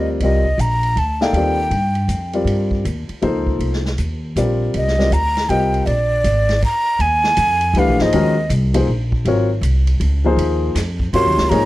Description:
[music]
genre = modal jazz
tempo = 159 BPM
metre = 3/4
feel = swing 63% on 8ths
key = C dorian, Eb dorian from 7.0 s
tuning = A4 = 441 Hz
[part]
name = breathy mellow silver concert flute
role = melody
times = 0.0-2.3, 4.8-8.5, 11.1-11.7 s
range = D5 to C6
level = -18 LUFS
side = right 1 dB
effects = none
[part]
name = warm grand piano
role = accompaniment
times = 0.0-11.7 s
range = C3 to F5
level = -19 LUFS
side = left 2 dB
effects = none
[part]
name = upright bass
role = bass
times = 0.0-11.7 s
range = Ab1 to Ab2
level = -18 LUFS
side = equal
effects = none
[part]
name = vintage drum kit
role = drums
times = 0.2-11.6 s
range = crash cymbal, hi-hat, kick drum, ride cymbal, snare drum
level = -28 LUFS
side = equal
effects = none
[sound]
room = studio reverb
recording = dry, close 1970s-style studio recording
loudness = -15 LUFS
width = side -16 dB against mid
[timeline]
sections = 0.0-7.0 A section; 7.0-11.7 B section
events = none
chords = 0.0 Cm9; 5.9 Bb7; 7.0 Eb9sus4

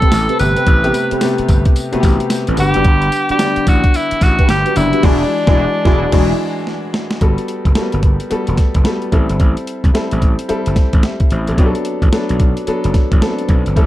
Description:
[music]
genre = R&B, new jack swing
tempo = 110 BPM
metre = 4/4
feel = swing 62% on 16ths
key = A dorian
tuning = A4 = 438 Hz
[part]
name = bright tenor saxophone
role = melody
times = 0.0-6.7 s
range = D4 to B4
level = -17 LUFS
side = equal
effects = digital delay
[part]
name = warm grand piano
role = accompaniment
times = 0.0-13.9 s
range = C3 to F#5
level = -19 LUFS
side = left 1 dB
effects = none
[part]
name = mellow synth brass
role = stabs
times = 0.0-6.3 s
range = C4 to B4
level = -22 LUFS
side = equal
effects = chorus
[part]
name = boom bap sampler-style drum kit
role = drums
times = 0.0-13.9 s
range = crash cymbal, hi-hat, kick drum, snare drum, tambourine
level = -14 LUFS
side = equal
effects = none
[part]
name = gritty slap bass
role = bass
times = 0.1-13.9 s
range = E1 to C2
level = -18 LUFS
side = equal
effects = overdrive
[sound]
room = light reverb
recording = dark, warm production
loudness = -12 LUFS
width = side -14 dB against mid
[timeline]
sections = 0.0-7.2 A section; 7.2-13.9 B section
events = band accent 5.0-7.2; drum fill 6.7-7.2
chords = 0.0 Am9; 2.6 Gmaj7; 5.0 E9; 7.2 Gmaj9; 9.1 Am7; 11.6 Bm7

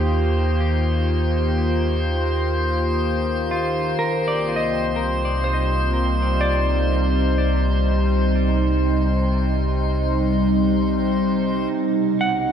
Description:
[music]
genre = ambient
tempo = 62 BPM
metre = 4/4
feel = straight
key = unclear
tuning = A4 = 441 Hz
[part]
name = evolving wavetable pad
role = sustained chords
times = 0.0-12.5 s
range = B2 to G4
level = -22 LUFS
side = right 1 dB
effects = chorus, built-in reverb
[part]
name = semi-hollow electric guitar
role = arpeggios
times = 0.0-12.5 s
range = F4 to F#5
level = -27 LUFS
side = equal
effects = ping-pong delay
[part]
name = warm sub bass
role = bass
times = 0.0-12.5 s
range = B1 to Eb2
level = -22 LUFS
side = equal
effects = none
[part]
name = overtone-sweeping drone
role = drone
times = 0.0-11.8 s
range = Eb3 to Eb4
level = -38 LUFS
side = left 2 dB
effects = none
[part]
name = drifting glass-harmonics texture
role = texture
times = 0.0-12.5 s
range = C5 to F6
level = -26 LUFS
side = left 2 dB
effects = chorus, built-in reverb
[sound]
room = wet concert hall reverb, RT60 2.0 s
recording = none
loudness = -18 LUFS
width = side -8 dB against mid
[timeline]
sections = 0.0-11.7 A section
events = none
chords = 0.0 Ebadd9; 4.0 Cm7; 11.7 B

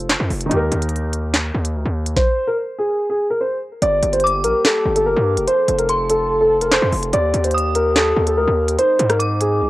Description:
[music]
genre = hip hop, drill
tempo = 145 BPM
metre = 4/4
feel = half-time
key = G minor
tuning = A4 = 438 Hz
[part]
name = felt-muted upright piano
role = accompaniment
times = 0.0-2.2 s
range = Eb3 to C5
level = -24 LUFS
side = equal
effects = low-pass filter, cassette tape
[part]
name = distorted 808-style bass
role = bass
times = 0.0-9.7 s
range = F1 to Ab2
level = -21 LUFS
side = equal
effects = distortion
[part]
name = drill drum kit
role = drums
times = 0.1-9.5 s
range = handclaps, hi-hat, kick drum, rim click, snare drum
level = -20 LUFS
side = equal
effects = cassette tape
[part]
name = dark concert grand piano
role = melody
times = 2.2-9.7 s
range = Ab4 to D5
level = -17 LUFS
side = equal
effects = low-pass filter, cassette tape, analog delay
[part]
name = warm French horn section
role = sustained chords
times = 3.8-9.7 s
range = Eb3 to A4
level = -25 LUFS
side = left 1 dB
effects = cassette tape
[part]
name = dark detuned synth bell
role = second line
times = 4.2-9.6 s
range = C6 to Eb6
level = -24 LUFS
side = equal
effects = chorus, phaser, cassette tape, analog delay
[sound]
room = moderate booth ambience, RT60 0.2 s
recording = home recording on cassette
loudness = -15 LUFS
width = side -17 dB against mid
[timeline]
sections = 0.0-3.8 A section; 3.8-9.7 B section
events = break 0.0-2.2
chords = 0.0 F; 0.5 Eb; 2.2 N.C.; 3.8 Gm; 5.5 F; 7.1 Eb; 8.8 Ab

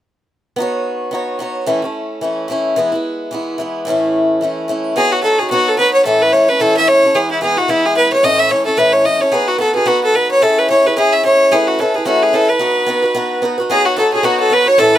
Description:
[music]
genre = celtic folk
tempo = 220 BPM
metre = 4/4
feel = swing 57% on 8ths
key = B mixolydian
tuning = A4 = 436 Hz
[part]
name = picked swing-style acoustic guitar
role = accompaniment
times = 0.6-15.0 s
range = A2 to C#5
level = -16 LUFS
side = equal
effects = none
[part]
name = clear fiddle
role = melody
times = 5.0-15.0 s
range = E4 to E5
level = -12 LUFS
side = equal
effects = none
[part]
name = rich fiddle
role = second line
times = 13.7-15.0 s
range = F#4 to C#5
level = -19 LUFS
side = left 3 dB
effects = none
[sound]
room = light reverb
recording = close, detailed microphones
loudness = -12 LUFS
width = side -12 dB against mid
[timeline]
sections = 0.6-5.0 A section; 5.0-13.7 B section; 13.7-15.0 B section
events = none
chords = 0.6 Badd9; 1.7 A; 2.8 E; 3.9 A; 5.0 Badd9; 6.1 A; 7.1 E; 8.2 A; 9.3 B; 10.4 C#m; 11.5 Aadd9; 12.6 B; 13.7 Badd9

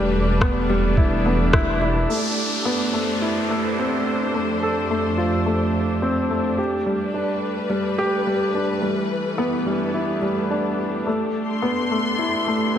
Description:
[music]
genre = piano and strings electronica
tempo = 107 BPM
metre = 4/4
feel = straight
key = A minor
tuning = A4 = 440 Hz
[part]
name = dark studio string section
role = sustained chords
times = 0.0-12.8 s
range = F2 to C6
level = -25 LUFS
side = equal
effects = sidechain pumping
[part]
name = warm baby grand piano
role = riff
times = 0.0-12.8 s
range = G3 to A4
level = -22 LUFS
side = equal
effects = tape echo
[part]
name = dark detuned saw bass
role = bass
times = 0.0-2.1 s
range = E1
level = -22 LUFS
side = equal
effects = sidechain pumping
[part]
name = electronic kick drum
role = drums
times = 0.4-1.6 s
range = none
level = -19 LUFS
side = equal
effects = none
[part]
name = electronic rim click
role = drums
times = 0.4-1.6 s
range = none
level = -26 LUFS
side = left 1 dB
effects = low-pass filter on snare
[part]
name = downlifter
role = sound effects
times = 2.1-6.6 s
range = none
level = -29 LUFS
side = equal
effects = none
[sound]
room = moderate lush hall reverb, RT60 2.0 s, digital ambience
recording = none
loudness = -19 LUFS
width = side -9 dB against mid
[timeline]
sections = 0.0-2.1 A section; 2.1-12.8 B section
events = band accent 1.5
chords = 0.0 Em7; 2.1 Amadd9; 4.3 F; 6.6 G; 8.8 Em7; 11.1 Amadd9

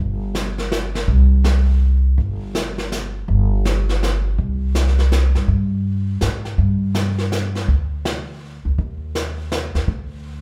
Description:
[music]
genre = jazz, small-group swing and bop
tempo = 164 BPM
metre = 3/4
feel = swing 64% on 8ths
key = unclear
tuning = A4 = 439 Hz
[part]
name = upright bass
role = bass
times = 0.0-10.4 s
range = G1 to Ab2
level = -20 LUFS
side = equal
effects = none
[part]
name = jazz brush drum kit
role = drums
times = 0.3-10.4 s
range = brushed snare drum, hi-hat, kick drum, snare drum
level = -26 LUFS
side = equal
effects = none
[sound]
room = light reverb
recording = heard from further back in the room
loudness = -19 LUFS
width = mono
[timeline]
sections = 0.0-10.4 A section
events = none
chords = none

